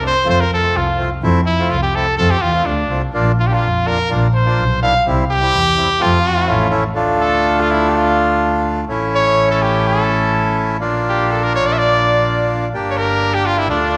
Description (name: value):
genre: klezmer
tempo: 125 BPM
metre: 2/4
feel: straight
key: F major, D harmonic minor from 7.0 s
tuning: A4 = 440 Hz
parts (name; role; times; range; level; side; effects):
- bright cornet; melody; 0.0-14.0 s; D4 to F5; -19 LUFS; equal; slapback echo
- accordion; accompaniment; 0.0-14.0 s; G3 to G4; -21 LUFS; equal; none
- dark double bass; bass; 0.0-14.0 s; G1 to F2; -21 LUFS; equal; none
room: wet echo chamber reverb, RT60 1.9 s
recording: none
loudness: -16 LUFS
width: mono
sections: 0.0-7.0 A section; 7.0-14.0 B section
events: none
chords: 0.0 F; 3.1 Bb; 5.1 C; 6.0 F; 6.5 A; 7.0 Dm; 8.9 A; 10.8 Bb; 12.7 Gm